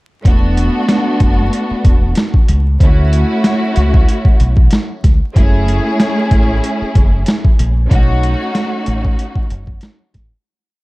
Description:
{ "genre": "hip hop, boom-bap hip-hop", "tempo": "94 BPM", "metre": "4/4", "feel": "swing 54% on 16ths", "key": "unclear", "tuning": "A4 = 439 Hz", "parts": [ { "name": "dark studio string section", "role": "accompaniment", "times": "0.2-10.0 s", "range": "A3 to G#4", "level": "-17 LUFS", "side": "equal", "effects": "high-pass filter, low-pass filter" }, { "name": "deep dub fingered electric bass", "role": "bass", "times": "0.3-10.3 s", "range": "E1 to D2", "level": "-14 LUFS", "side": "equal", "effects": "none" }, { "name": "boom bap sampler-style drum kit", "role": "drums", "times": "0.3-10.3 s", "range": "hi-hat, kick drum, snare drum", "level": "-12 LUFS", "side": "equal", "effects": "overdrive" } ], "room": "little or no reverb", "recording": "dark, warm production, vinyl crackle", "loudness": "-11 LUFS", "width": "side -21 dB against mid", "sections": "0.3-10.5 verse", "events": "fade-out 7.9-10.5", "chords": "0.3 E7sus4; 2.8 Dmaj7; 5.4 F#m7; 7.9 B7" }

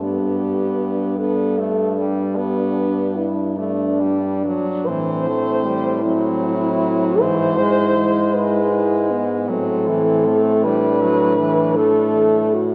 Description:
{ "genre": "classical, lyrical piece for horn quartet", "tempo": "45-54 BPM (dotted quarters)", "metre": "12/8", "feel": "rubato", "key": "G major", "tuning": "A4 = 436 Hz", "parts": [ { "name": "mellow French horn", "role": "melody", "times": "0.0-12.7 s", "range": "D4 to C5", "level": "-22 LUFS", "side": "equal", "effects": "none" }, { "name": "mellow French horn", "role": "second line", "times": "0.0-12.7 s", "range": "B3 to E4", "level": "-27 LUFS", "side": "equal", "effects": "none" }, { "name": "clear French horn", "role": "accompaniment", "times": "0.0-12.7 s", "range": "E3 to B3", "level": "-25 LUFS", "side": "equal", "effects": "none" }, { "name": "mellow French horn", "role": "bass", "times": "0.0-12.7 s", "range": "G2 to A2", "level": "-25 LUFS", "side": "equal", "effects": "none" } ], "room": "wet cathedral reverb, RT60 4.5 s", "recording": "none", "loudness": "-19 LUFS", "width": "mono", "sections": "0.0-12.7 A section", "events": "none", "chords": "0.0 G; 4.9 Am; 7.2 E/G#; 9.5 Am" }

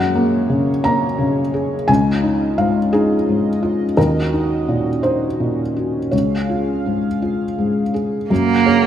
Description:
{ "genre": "neoclassical piano and strings", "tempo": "56 BPM (dotted quarters)", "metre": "6/8", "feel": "uneven beats, rubato", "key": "Db major", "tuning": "A4 = 441 Hz", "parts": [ { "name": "felt-muted upright piano", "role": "accompaniment", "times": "0.0-8.9 s", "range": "Db2 to Bb5", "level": "-17 LUFS", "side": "left 1 dB", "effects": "none" }, { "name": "chorused pulse-width pad", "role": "sustained chords", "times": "0.0-8.9 s", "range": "Db3 to Gb5", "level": "-24 LUFS", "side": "right 1 dB", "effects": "none" }, { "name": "rich cello", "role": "second line", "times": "8.3-8.9 s", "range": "Bb3", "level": "-13 LUFS", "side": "right 8 dB", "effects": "slapback echo" } ], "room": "moderate plate reverb, RT60 2.6 s", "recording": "rough home demo mix", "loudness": "-16 LUFS", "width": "side -10 dB against mid", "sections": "0.0-8.3 A section", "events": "none", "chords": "0.0 Gbadd9; 1.9 Dbadd9; 4.0 Ebm7; 6.1 Db; 8.3 Gbadd9" }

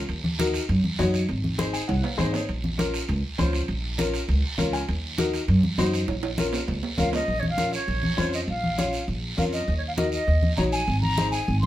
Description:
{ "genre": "latin, cumbia", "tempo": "200 BPM", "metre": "4/4", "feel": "straight", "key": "Bb minor", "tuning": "A4 = 440 Hz", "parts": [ { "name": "upright bass", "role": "bass", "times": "0.0-11.7 s", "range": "Ab1 to Gb2", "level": "-26 LUFS", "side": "equal", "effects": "none" }, { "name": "congas", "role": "percussion", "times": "0.1-11.7 s", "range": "none", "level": "-29 LUFS", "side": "equal", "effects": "none" }, { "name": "guiro", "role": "percussion", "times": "0.1-11.7 s", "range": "none", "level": "-34 LUFS", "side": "right 3 dB", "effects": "none" }, { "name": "timbales", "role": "percussion", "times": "0.1-7.2 s", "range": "none", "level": "-34 LUFS", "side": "right 5 dB", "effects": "none" }, { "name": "clear upright piano", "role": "accompaniment", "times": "0.4-11.4 s", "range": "Db4 to Ab5", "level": "-28 LUFS", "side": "left 3 dB", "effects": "none" }, { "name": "breathy silver concert flute", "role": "melody", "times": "7.0-11.7 s", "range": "Db5 to C6", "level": "-28 LUFS", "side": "equal", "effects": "none" } ], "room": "wet small room reverb, RT60 0.5 s", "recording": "band playing live in one room", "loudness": "-22 LUFS", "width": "side -14 dB against mid", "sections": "0.0-7.3 A section; 7.3-11.7 B section", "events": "upright piano fill 1.6-2.5, 4.4-4.9; drum fill 1.9-2.5, 6.1-7.3", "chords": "0.1 Ebm; 1.3 Ab; 2.5 Bbm; 4.9 Ebm; 6.1 Bbm; 9.7 Ebm; 10.9 Ab" }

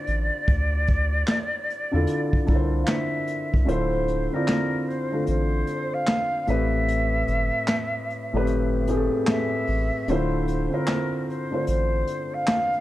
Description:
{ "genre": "lo-fi hip hop", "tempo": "75 BPM", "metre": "4/4", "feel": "swing 63% on 16ths", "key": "D minor", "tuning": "A4 = 440 Hz", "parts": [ { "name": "concert flute", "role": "melody", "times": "0.0-12.8 s", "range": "Bb4 to F5", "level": "-28 LUFS", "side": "equal", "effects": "low-pass filter" }, { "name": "felt-muted upright piano", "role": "accompaniment", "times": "0.0-12.8 s", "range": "A2 to D5", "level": "-26 LUFS", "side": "equal", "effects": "cassette tape, low-pass filter" }, { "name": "soft dub sub bass", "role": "bass", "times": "0.1-12.0 s", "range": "D1 to E2", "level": "-25 LUFS", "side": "equal", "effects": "none" }, { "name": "vintage brush drum kit", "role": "drums", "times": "0.1-12.8 s", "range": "handclaps, hi-hat, kick drum, snare drum", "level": "-24 LUFS", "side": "equal", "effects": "none" } ], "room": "moderate spring reverb, RT60 2.1 s", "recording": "dark, warm production", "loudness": "-22 LUFS", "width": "side -15 dB against mid", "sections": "0.0-3.7 A section; 3.7-12.8 B section", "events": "kick muted 3.7-12.8", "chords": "0.0 Dm9; 6.5 Am9; 10.1 Dm9" }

